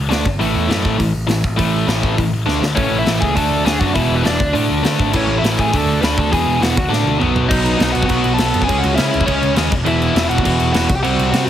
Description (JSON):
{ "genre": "punk rock", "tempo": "203 BPM", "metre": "4/4", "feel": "straight", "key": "unclear", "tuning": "A4 = 439 Hz", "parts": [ { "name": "overdriven picked electric bass", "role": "bass", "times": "0.0-11.5 s", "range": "E1 to D3", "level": "-21 LUFS", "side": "equal", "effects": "none" }, { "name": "overdriven electric guitar", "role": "riff", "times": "0.1-11.5 s", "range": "E2 to D4", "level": "-21 LUFS", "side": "right 10 dB", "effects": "none" }, { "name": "tight distorted guitar", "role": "riff", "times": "0.1-11.5 s", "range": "E2 to D4", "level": "-20 LUFS", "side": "left 6 dB", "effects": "distortion" }, { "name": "big rock drum kit", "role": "drums", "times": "0.1-11.4 s", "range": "crash cymbal, hi-hat, kick drum, snare drum, toms", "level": "-20 LUFS", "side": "equal", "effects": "none" }, { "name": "biting lead guitar", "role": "melody", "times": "2.8-11.4 s", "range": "C#4 to B5", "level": "-20 LUFS", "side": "left 1 dB", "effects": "overdrive" } ], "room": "light reverb", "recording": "heavily compressed radio sound", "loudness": "-14 LUFS", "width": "side -10 dB against mid", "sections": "0.0-2.8 A section; 2.8-7.5 B section; 7.5-11.5 C section", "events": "drum fill 2.5, 6.9-7.5", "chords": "0.1 D5; 0.2 N.C.; 0.4 A5; 2.5 D5; 2.6 N.C.; 2.8 A; 3.4 D; 4.0 E5; 4.4 D5; 5.1 A; 5.7 D5; 6.3 E; 6.8 D; 7.2 B5; 8.7 C#m; 9.7 E5; 10.9 C5", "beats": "0.10 | 0.39 0.69 0.99 1.28 | 1.58 1.88 2.17 2.47 | 2.77 3.06 3.36 3.66 | 3.95 4.25 4.54 4.84 | 5.14 5.43 5.73 6.02 | 6.32 6.61 6.91 7.20 | 7.50 7.79 8.09 8.38 | 8.68 8.97 9.27 9.56 | 9.85 10.15 10.44 10.74 | 11.03 11.32" }